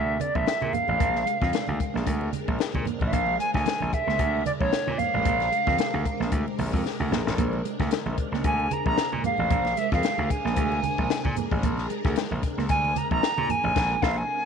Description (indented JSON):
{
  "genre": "funk",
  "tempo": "113 BPM",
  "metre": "4/4",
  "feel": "swing 56% on 16ths",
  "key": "Bb mixolydian",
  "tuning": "A4 = 440 Hz",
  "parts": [
    { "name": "silver concert flute", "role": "melody", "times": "0.0-14.5 s", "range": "Db5 to Bb5", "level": "-26 LUFS", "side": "right 2 dB", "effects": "none" },
    { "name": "phased string machine", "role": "sustained chords", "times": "0.0-14.5 s", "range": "C3 to Bb4", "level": "-33 LUFS", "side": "equal", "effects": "ensemble chorus, phaser" },
    { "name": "mellow electric guitar", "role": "riff", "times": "0.0-13.6 s", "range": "Ab3 to Bb3", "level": "-34 LUFS", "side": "right 15 dB", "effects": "none" },
    { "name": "gritty slap bass", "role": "bass", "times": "0.0-14.2 s", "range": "A1 to Bb2", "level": "-28 LUFS", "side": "equal", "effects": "overdrive" },
    { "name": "compact cocktail drum kit", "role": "drums", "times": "0.2-14.2 s", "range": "crash cymbal, hi-hat, kick drum, snare drum", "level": "-28 LUFS", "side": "left 4 dB", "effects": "none" },
    { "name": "congas", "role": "percussion", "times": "0.2-13.8 s", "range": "none", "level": "-34 LUFS", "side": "right 8 dB", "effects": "none" }
  ],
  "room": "light reverb",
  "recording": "1960s-style stereo",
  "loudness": "-23 LUFS",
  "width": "side -6 dB against mid",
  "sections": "0.0-14.5 A section",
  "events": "flute solo 0.0-14.5; drum fill 6.9-7.4; band accent 13.8-14.5",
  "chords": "0.0 Bb9"
}